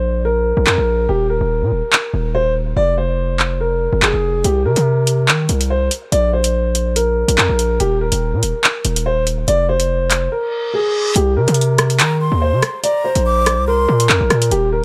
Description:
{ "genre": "hip hop, drill", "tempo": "143 BPM", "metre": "4/4", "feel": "half-time", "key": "unclear", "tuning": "A4 = 440 Hz", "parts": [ { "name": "dark concert grand piano", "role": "melody", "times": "0.0-14.8 s", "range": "G4 to D5", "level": "-20 LUFS", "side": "equal", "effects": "none" }, { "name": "distorted 808-style bass", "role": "bass", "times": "0.0-14.8 s", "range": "Eb1 to Eb3", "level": "-20 LUFS", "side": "equal", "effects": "distortion" }, { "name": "drill drum kit", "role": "drums", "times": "0.7-14.6 s", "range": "handclaps, hi-hat, rim click", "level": "-18 LUFS", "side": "equal", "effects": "none" }, { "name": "reverse cymbal", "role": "sound effects", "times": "10.5-11.2 s", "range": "none", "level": "-26 LUFS", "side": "equal", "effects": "none" }, { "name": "breathy jazz flute", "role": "second line", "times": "12.0-14.1 s", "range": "Bb5 to D6", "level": "-25 LUFS", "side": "equal", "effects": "tape echo" } ], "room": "studio ambience", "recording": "none", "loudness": "-16 LUFS", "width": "mono", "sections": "0.0-11.2 A section; 11.2-14.8 B section", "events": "break 0.0-4.4, 10.3-11.2; reverse cymbal 10.5-11.2", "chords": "0.0 Bb5; 1.1 Eb5; 2.8 Fm; 4.4 N.C.; 6.1 Bb5; 7.8 Eb5; 9.5 Fm; 11.2 Cm; 12.8 Bb", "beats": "0.25 0.67 | 1.09 1.51 1.93 2.35 | 2.77 3.19 3.60 4.03 | 4.44 4.86 5.28 5.70 | 6.12 6.54 6.96 7.38 | 7.80 8.22 8.64 9.06 | 9.48 9.90 10.32 10.74 | 11.16 11.58 12.00 12.42 | 12.84 13.26 13.68 14.10 | 14.51" }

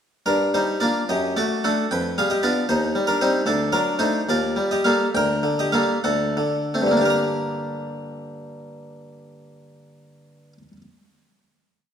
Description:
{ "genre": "classical, baroque-style suite movement for harpsichord", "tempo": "54-78 BPM (dotted quarters)", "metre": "6/8", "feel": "rubato", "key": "G minor", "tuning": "A4 = 440 Hz", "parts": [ { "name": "harpsichord", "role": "solo", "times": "0.3-10.8 s", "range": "D2 to Bb5", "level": "-20 LUFS", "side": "equal", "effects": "none" } ], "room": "moderate recital hall reverb, RT60 1.7 s", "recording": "dark, warm production", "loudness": "-19 LUFS", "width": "side -8 dB against mid", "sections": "0.3-7.1 A section; 7.1-11.1 final chord", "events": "slowing down 2.7-7.1", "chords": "0.3 Gm; 1.1 D/F#; 1.9 G7/F; 2.7 Cm/Eb; 3.5 D; 4.3 Eb; 5.1 Gm/D; 6.0 D7; 7.1 Gm", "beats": "| 0.26 1.08 | 1.91 2.69 | 3.47 4.28 | 5.13 6.04 | 7.10 8.12 | 9.12 10.13" }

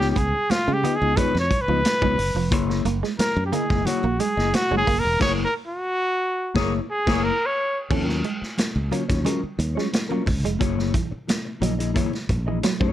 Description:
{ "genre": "funk", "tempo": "89 BPM", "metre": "4/4", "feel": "straight", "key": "unclear", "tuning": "A4 = 440 Hz", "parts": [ { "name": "warm trumpet", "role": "melody", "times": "0.0-7.8 s", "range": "F4 to Db5", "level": "-23 LUFS", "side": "equal", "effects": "none" }, { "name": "mellow electric guitar", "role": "accompaniment", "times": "0.0-12.9 s", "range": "Gb3 to Eb5", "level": "-27 LUFS", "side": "left 7 dB", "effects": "none" }, { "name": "clean electric guitar", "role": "riff", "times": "0.0-12.8 s", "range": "Fb3 to Db4", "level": "-29 LUFS", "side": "right 9 dB", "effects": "analog chorus" }, { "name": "modern bright fingered electric bass", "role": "bass", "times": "0.0-12.9 s", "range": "Fb1 to Db3", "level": "-25 LUFS", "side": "equal", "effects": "none" }, { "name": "vintage drum kit", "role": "drums", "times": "0.0-12.9 s", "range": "crash cymbal, hi-hat, kick drum, snare drum", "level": "-26 LUFS", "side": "equal", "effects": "none" }, { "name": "congas", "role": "percussion", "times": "0.2-12.9 s", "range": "none", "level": "-34 LUFS", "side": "right 5 dB", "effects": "none" }, { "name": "warm horn section", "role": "second line", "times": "5.2-7.2 s", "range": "Bb3 to Db5", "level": "-30 LUFS", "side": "left 2 dB", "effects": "none" } ], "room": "light reverb", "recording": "none", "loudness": "-20 LUFS", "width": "side -12 dB against mid", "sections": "0.0-7.9 A section; 7.9-12.9 B section", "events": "trumpet solo 0.0-7.9; band accent 5.2-7.9", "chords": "0.0 Db9; 2.5 Gb9; 7.9 Ebm9; 10.6 Gb9", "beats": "0.50 1.17 1.85 | 2.52 3.19 3.86 4.54 | 5.21 5.88 6.56 7.23 | 7.91 8.58 9.26 9.93 | 10.61 11.28 11.96 12.64" }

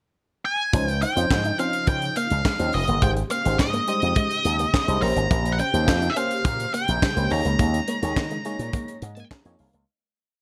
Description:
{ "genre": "early-eighties boogie funk", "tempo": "105 BPM", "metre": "4/4", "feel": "straight", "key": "unclear", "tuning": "A4 = 440 Hz", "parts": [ { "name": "octave-fuzz lead guitar", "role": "melody", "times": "0.5-9.3 s", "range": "Eb5 to Bb5", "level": "-28 LUFS", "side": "equal", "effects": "distortion, slapback echo" }, { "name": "FM electric piano", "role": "accompaniment", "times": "0.7-9.9 s", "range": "F3 to Bb5", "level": "-32 LUFS", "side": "equal", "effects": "chorus, phaser" }, { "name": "phased string machine", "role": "sustained chords", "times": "0.7-9.9 s", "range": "Db3 to C5", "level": "-40 LUFS", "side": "equal", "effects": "none" }, { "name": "electric guitar with an envelope filter", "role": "riff", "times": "0.7-9.8 s", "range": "G3 to Eb4", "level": "-34 LUFS", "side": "equal", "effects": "analog chorus" }, { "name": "slap bass with an envelope filter", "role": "bass", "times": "0.7-9.8 s", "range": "F1 to Eb3", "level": "-27 LUFS", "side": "equal", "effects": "none" }, { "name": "tight funk drum kit", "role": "drums", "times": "0.7-9.9 s", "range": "handclaps, hi-hat, kick drum, snare drum", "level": "-28 LUFS", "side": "equal", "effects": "none" } ], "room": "light reverb, small room ambience", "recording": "none", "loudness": "-23 LUFS", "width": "mono", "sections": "0.0-0.7 pickup bar; 0.7-9.9 verse", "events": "fade-out 7.6-9.9; FM electric piano fill 9.0-9.9", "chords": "0.0 N.C.; 0.7 Dbmaj9; 3.0 Abmaj7; 7.3 Eb7sus4", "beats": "0.16 | 0.74 1.31 1.88 2.45 | 3.02 3.59 4.16 4.74 | 5.31 5.88 6.45 7.02 | 7.59 8.16 8.74 9.31" }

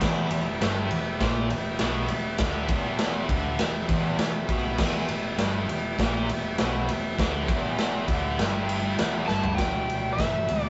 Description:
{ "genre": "garage rock duo or trio", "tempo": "100 BPM", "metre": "4/4", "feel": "straight", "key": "E minor", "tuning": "A4 = 436 Hz", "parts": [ { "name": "combo organ", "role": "sustained chords", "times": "0.0-10.7 s", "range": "G4 to E5", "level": "-36 LUFS", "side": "equal", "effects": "none" }, { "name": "thick fuzz guitar", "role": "riff", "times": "0.0-10.7 s", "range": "E2 to E3", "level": "-32 LUFS", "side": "equal", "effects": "distortion" }, { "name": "picked electric bass", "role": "bass", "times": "0.0-10.7 s", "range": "E1 to D2", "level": "-37 LUFS", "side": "equal", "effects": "overdrive" }, { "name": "raw garage drum kit", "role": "drums", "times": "0.0-10.6 s", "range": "crash cymbal, kick drum, ride cymbal, snare drum, toms", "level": "-29 LUFS", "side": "equal", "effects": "none" }, { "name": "overdriven slide guitar", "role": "melody", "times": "9.3-10.7 s", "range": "E5 to A5", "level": "-31 LUFS", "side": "equal", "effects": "none" } ], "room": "moderate stone room reverb, RT60 1.0 s", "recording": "rough rehearsal-room recording, nothing above 7.9 kHz", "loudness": "-26 LUFS", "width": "mono", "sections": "0.0-9.6 A section; 9.6-10.7 B section", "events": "drum fill 9.3-9.6", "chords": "0.0 Em", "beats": "| 0.01 0.61 1.21 1.81 | 2.40 3.00 3.60 4.20 | 4.79 5.39 5.99 6.59 | 7.19 7.79 8.39 8.99 | 9.59 10.19" }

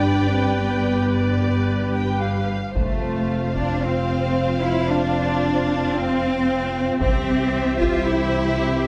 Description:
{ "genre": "cinematic, epic orchestral film score", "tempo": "112 BPM", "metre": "4/4", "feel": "straight", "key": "unclear", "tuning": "A4 = 440 Hz", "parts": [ { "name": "warm symphonic violin section", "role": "second line", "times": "0.0-8.9 s", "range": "C5 to G5", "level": "-31 LUFS", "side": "equal", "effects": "none" }, { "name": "rich symphonic viola section", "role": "accompaniment", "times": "0.0-8.9 s", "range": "F4 to B4", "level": "-32 LUFS", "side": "equal", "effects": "none" }, { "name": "dark French horn section", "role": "sustained chords", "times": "0.0-8.9 s", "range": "E3 to D4", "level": "-28 LUFS", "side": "equal", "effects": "none" }, { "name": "rich symphonic cello section", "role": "bass", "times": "0.0-8.9 s", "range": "G2 to F4", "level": "-26 LUFS", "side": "equal", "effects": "none" }, { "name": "rich symphonic double bass section", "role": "bass", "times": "0.0-8.9 s", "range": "F1 to C2", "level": "-28 LUFS", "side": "equal", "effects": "none" }, { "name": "warm symphonic violin section", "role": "melody", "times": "2.8-8.9 s", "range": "E5 to F5", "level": "-33 LUFS", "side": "equal", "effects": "none" }, { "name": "taiko ensemble", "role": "drums", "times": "2.8-8.1 s", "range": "none", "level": "-29 LUFS", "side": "equal", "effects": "none" } ], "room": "moderate scoring stage reverb, RT60 1.9 s", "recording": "lossy compression artefacts", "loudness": "-21 LUFS", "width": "mono", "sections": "0.0-2.8 A section; 2.8-8.9 A section", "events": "none", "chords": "0.0 G; 2.8 F; 7.0 C", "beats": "0.03 | 0.58 1.12 1.67 2.21 | 2.76 3.29 3.83 4.36 | 4.89 5.42 5.95 6.48 | 7.01 7.54 8.08 8.61" }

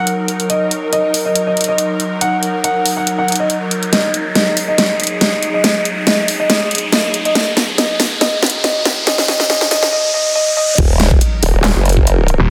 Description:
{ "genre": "heavy wobble dubstep", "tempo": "140 BPM", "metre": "4/4", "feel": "swing 53% on 16ths, half-time", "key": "Eb minor", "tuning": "A4 = 437 Hz", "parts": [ { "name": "warm baby grand piano", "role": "melody", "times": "0.0-10.7 s", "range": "Eb5 to Gb5", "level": "-20 LUFS", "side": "equal", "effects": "vintage 12-bit sampler grit, tape echo" }, { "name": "evolving wavetable pad", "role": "sustained chords", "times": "0.0-12.5 s", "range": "Gb3 to Bb4", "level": "-25 LUFS", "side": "equal", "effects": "ensemble chorus, built-in reverb, sidechain pumping" }, { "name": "riser and sub drop", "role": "sound effects", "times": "0.3-12.5 s", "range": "none", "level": "-24 LUFS", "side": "equal", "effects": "none" }, { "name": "dubstep drum kit", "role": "drums", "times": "0.1-12.4 s", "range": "crash cymbal, handclaps, hi-hat, snare drum", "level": "-18 LUFS", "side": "equal", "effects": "studio reverb, soft clipping on snare" }, { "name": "formant-sweep wobble bass", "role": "bass", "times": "10.8-12.4 s", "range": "Eb1 to Gb1", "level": "-16 LUFS", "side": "equal", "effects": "chorus, overdrive" }, { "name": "electronic kick drum", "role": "drums", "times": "10.8-12.0 s", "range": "none", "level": "-15 LUFS", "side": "equal", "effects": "studio reverb" }, { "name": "snarling distorted saw bass", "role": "bass", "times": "12.4-12.5 s", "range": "Eb1", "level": "-12 LUFS", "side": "equal", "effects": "distortion, overdrive" } ], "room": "moderate lush hall reverb, RT60 2.1 s", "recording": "dense, heavily limited modern master, high-pass filter", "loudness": "-15 LUFS", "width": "mono", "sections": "0.0-10.8 A section; 10.8-12.5 B section", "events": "build-up 0.0-10.8; filter sweep 0.0-10.8; riser 0.3-10.8; drum fill 3.9-9.9; drop 10.8-12.5; impact 10.8-12.5", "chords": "0.0 Ebm", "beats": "0.07 | 0.50 0.93 1.35 1.78 | 2.21 2.64 3.07 3.50 | 3.93 4.36 4.78 5.21 | 5.64 6.07 6.50 6.93 | 7.36 7.78 8.21 8.64 | 9.07 9.50 9.93 10.36 | 10.78 11.21 11.64 12.07 | 12.50" }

